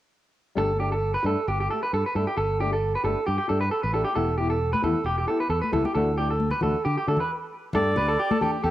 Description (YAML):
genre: highlife guitar band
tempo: 134 BPM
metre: 4/4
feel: straight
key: G major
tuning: A4 = 440 Hz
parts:
  - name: flamenco guitar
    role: accompaniment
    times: 0.6-8.6 s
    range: E3 to G4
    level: -29 LUFS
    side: left 4 dB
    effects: plate reverb
  - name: clean electric guitar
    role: arpeggios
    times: 0.6-8.7 s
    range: G4 to B4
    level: -25 LUFS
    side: right 2 dB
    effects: spring reverb, tape echo
  - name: fingered electric bass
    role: bass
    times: 0.6-8.7 s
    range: E1 to D3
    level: -27 LUFS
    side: equal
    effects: none
  - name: congas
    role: percussion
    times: 4.7-8.5 s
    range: none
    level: -30 LUFS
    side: left 3 dB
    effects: none
  - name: melodica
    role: melody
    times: 7.7-8.7 s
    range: G4 to D5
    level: -25 LUFS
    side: equal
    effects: tape echo
room: wet studio reverb, RT60 0.5 s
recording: home recording on cassette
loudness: -22 LUFS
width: side -14 dB against mid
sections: 0.6-7.7 A section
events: stop 7.3-7.7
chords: 0.6 Gsus2; 4.2 Em; 6.0 D; 7.7 Gsus2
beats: | 0.57 1.02 1.47 1.92 | 2.37 2.82 3.27 3.72 | 4.17 4.61 5.06 5.51 | 5.96 6.41 6.85 7.30 | 7.75 8.19 8.64